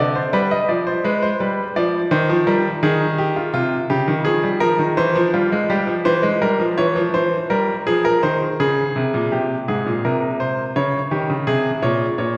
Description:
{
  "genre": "classical, baroque-style two-part invention for grand piano",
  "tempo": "84 BPM",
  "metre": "4/4",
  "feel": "straight",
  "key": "F minor",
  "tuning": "A4 = 440 Hz",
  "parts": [
    { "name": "bright baby grand piano", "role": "solo", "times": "0.0-12.4 s", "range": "Ab2 to Eb5", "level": "-19 LUFS", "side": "equal", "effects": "none" }
  ],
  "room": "wet scoring stage reverb, RT60 2.0 s",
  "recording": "heard from further back in the room",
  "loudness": "-19 LUFS",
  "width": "mono",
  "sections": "0.0-9.3 A section; 9.3-12.4 B section",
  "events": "none",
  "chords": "0.0 G; 0.7 G7/F; 2.1 Cm/Eb; 3.5 Fm/C; 5.0 C/E; 6.4 C7; 7.9 Fm; 9.3 Ab; 10.8 Db5"
}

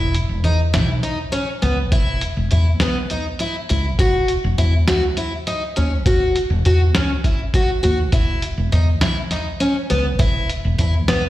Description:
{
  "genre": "progressive instrumental, band music in an uneven meter",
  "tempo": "203 BPM (eighths)",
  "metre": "7/8",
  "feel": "straight",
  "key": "unclear",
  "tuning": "A4 = 440 Hz",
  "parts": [
    { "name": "picked twelve-string acoustic guitar", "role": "arpeggios", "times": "0.0-11.2 s", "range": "B3 to F#4", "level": "-21 LUFS", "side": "left 1 dB", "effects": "plate reverb, slapback echo" },
    { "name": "woody fretless electric bass", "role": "bass", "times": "0.0-11.3 s", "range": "E1 to E2", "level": "-18 LUFS", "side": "equal", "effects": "lush chorus" },
    { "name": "lo-fi sampler-style drum kit", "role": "drums", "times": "0.1-11.2 s", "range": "hi-hat, kick drum, snare drum", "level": "-20 LUFS", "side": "equal", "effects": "none" }
  ],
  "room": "light reverb",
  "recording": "live gig heard through the venue's PA, recital hall reverb",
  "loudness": "-16 LUFS",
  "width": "side -15 dB against mid",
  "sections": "0.0-11.3 A section",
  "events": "none",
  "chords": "0.0 E5; 4.0 F#5/E; 8.1 E5"
}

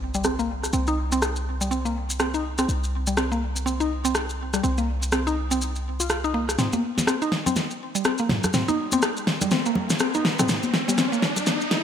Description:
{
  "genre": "afro house",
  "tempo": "123 BPM",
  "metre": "4/4",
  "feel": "swing 60% on 16ths",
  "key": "C minor",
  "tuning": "A4 = 437 Hz",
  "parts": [
    { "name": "warm 808-style bass", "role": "bass", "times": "0.0-6.6 s", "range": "C2", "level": "-28 LUFS", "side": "equal", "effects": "none" },
    { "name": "impact and riser", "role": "sound effects", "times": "0.0-0.7, 8.2-11.8 s", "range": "none", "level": "-32 LUFS", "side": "equal", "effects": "none" },
    { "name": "mallet-like synth pluck", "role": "arpeggios", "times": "0.1-11.2 s", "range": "G3 to F4", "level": "-26 LUFS", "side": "equal", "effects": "chorus, digital delay" },
    { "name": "maracas", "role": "percussion", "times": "0.1-11.7 s", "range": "none", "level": "-31 LUFS", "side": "left 1 dB", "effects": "none" },
    { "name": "deep house drum kit", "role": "drums", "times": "0.2-11.8 s", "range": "rim click, snare drum, toms", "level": "-25 LUFS", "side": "equal", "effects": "low-pass filter on hats, low-pass filter on snare, low-pass filter on toms, low-pass filter on room" },
    { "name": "congas", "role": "percussion", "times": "6.7-11.6 s", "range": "none", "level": "-29 LUFS", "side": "left 3 dB", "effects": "none" }
  ],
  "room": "light reverb, digital ambience",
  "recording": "high-pass filter",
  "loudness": "-22 LUFS",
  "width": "side -8 dB against mid",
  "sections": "0.0-6.6 A section; 6.6-11.8 B section",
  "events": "impact 0.0-0.7; filter sweep on drum 0.0-6.6; filter sweep on synth arpeggio sound 0.0-6.6; build-up 6.6-11.8; drum fill 6.6-11.8; riser 8.2-11.8",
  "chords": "0.0 N.C.; 6.6 C7(no3)"
}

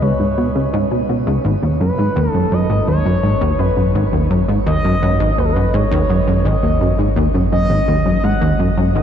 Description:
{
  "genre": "ambient, sequencer-driven space music",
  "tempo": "84 BPM",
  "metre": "4/4",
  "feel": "straight",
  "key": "unclear",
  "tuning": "A4 = 440 Hz",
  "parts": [
    { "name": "expressive synth lead", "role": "melody", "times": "0.0-9.0 s", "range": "A4 to F#5", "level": "-20 LUFS", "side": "equal", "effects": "chorus, shimmer reverb, ping-pong delay" },
    { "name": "plucky analog bass", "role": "riff", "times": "0.0-9.0 s", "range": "G#1 to C#3", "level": "-15 LUFS", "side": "equal", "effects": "wide subtle chorus, vintage 12-bit sampler grit, shimmer reverb, ping-pong delay" },
    { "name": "warm sub bass", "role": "bass", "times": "0.0-9.0 s", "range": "G#1 to C#2", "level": "-22 LUFS", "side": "equal", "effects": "none" }
  ],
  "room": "wet huge ambient reverb, RT60 8.7 s",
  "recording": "dark, warm production",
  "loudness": "-14 LUFS",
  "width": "side -9 dB against mid",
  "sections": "0.0-9.0 A section",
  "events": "none",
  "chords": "0.0 C#7(no3); 1.4 G#m7"
}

